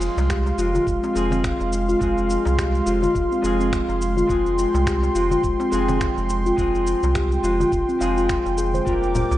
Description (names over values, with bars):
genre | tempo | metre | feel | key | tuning
organic downtempo | 105 BPM | 4/4 | swing 57% on 16ths | F minor | A4 = 440 Hz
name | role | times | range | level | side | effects
clean electric guitar | accompaniment | 0.0-9.4 s | F3 to Bb4 | -32 LUFS | left 2 dB | sidechain pumping, tape echo
warm analog pad | sustained chords | 0.0-9.4 s | Ab3 to D6 | -26 LUFS | right 1 dB | chorus, sidechain pumping
warm sub bass | bass | 0.0-9.4 s | F1 to C2 | -24 LUFS | equal | sidechain pumping
electronic shaker, finger snaps and congas | drums | 0.0-9.4 s | none | -32 LUFS | equal | studio reverb
darbuka | percussion | 0.0-9.4 s | none | -34 LUFS | left 2 dB | none
steel tongue drum | arpeggios | 0.3-9.0 s | C4 to F5 | -22 LUFS | left 1 dB | low-pass filter, tape echo
electronic kick drum | drums | 0.3-9.0 s | none | -29 LUFS | equal | studio reverb
room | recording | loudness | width
light reverb | rough home demo mix, nothing above 10.4 kHz | -18 LUFS | side -14 dB against mid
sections
0.0-9.4 A section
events
filter sweep on steel tongue drum 0.0-9.4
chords
0.0 Fm; 8.9 Gm/F